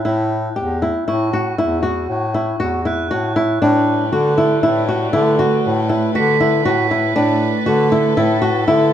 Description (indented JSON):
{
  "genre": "contemporary instrumental, chamber music in an uneven meter",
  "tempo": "118 BPM",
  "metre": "7/4",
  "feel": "straight",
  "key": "unclear",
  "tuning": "A4 = 440 Hz",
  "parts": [
    { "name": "flamenco guitar", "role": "arpeggios", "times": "0.1-8.9 s", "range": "D4 to G4", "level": "-18 LUFS", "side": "equal", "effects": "none" },
    { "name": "clear bass clarinet", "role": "bass", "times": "0.1-8.9 s", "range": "E2 to D3", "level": "-18 LUFS", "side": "equal", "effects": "none" },
    { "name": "crotales", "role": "texture", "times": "1.1-7.5 s", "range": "C#6 to B6", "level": "-26 LUFS", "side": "right 8 dB", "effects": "none" },
    { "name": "warm studio string section", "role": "sustained chords", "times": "3.6-8.9 s", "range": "G3 to B4", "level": "-23 LUFS", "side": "right 1 dB", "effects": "none" }
  ],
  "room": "moderate recital hall reverb, RT60 1.6 s",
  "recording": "minimal, uncompressed stereo recording",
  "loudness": "-14 LUFS",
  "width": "side -10 dB against mid",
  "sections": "0.0-8.9 A section",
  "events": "none",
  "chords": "0.0 A; 3.6 Gadd9/A",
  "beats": "| 0.06 0.57 1.08 1.58 2.09 2.60 3.11 | 3.62 4.12 4.63 5.14 5.64 6.15 6.66 | 7.16 7.67 8.17 8.68"
}